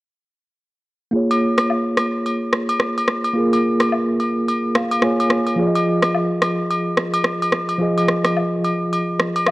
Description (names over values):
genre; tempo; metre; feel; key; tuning
afrobeats; 108 BPM; 4/4; swing 58% on 16ths; Bb minor; A4 = 440 Hz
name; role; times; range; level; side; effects
tine electric piano; accompaniment; 1.1-9.5 s; F3 to Ab5; -19 LUFS; equal; medium tremolo, low-pass filter
agogo bells and woodblock; percussion; 1.3-9.5 s; none; -23 LUFS; left 1 dB; none
electronic rim click; drums; 1.6-9.5 s; none; -21 LUFS; equal; none
room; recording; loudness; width
light reverb, small room ambience; dry, gritty hardware recording, cassette tape; -17 LUFS; side -18 dB against mid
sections
1.1-9.5 A section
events
hi-hats muted 1.1-9.5; tine electric piano fill 4.5-5.6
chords
1.1 Bbm7; 5.6 Fm7